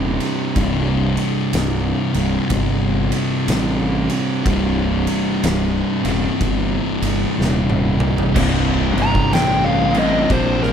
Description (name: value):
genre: stoner and doom metal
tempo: 62 BPM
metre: 4/4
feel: swing 63% on 8ths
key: unclear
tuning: A4 = 440 Hz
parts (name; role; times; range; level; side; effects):
- thick fuzz guitar; riff; 0.0-10.7 s; C2 to C3; -22 LUFS; left 8 dB; distortion
- thick fuzz guitar; riff; 0.0-10.7 s; C2 to C3; -22 LUFS; right 10 dB; distortion
- fuzz fingered electric bass; bass; 0.0-10.7 s; C1 to Bb1; -21 LUFS; equal; overdrive, tube saturation
- oversized low-tuned drum kit; drums; 0.2-10.7 s; crash cymbal, kick drum, ride cymbal, snare drum, toms; -24 LUFS; equal; none
- heavy high-gain guitar; riff; 8.4-10.7 s; C2 to C3; -26 LUFS; equal; distortion
- fuzz lead guitar; melody; 9.0-10.7 s; Bb4 to Bb5; -19 LUFS; left 1 dB; distortion, slapback echo
room: little or no reverb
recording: none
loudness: -16 LUFS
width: side -8 dB against mid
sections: 0.0-8.4 A section; 8.4-10.7 B section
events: drum fill 7.4-8.4; lead electric guitar solo 8.4-10.7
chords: 0.0 C5